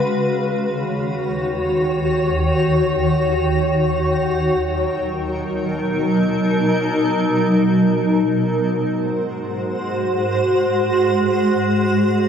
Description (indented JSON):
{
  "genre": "hip hop",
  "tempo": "free time",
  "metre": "none",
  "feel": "none",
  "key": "Eb minor",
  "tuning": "A4 = 440 Hz",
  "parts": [
    { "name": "granular cloud pad", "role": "solo", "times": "0.0-12.3 s", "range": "Eb2 to Db5", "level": "-16 LUFS", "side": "equal", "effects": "built-in reverb" }
  ],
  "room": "moderate huge ambient reverb, RT60 9.0 s",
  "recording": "none",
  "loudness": "-16 LUFS",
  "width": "side -7 dB against mid",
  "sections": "0.0-12.3 A section",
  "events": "none",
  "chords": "0.0 Ebm7; 4.0 Bmaj7; 8.0 Ab7",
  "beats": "free time"
}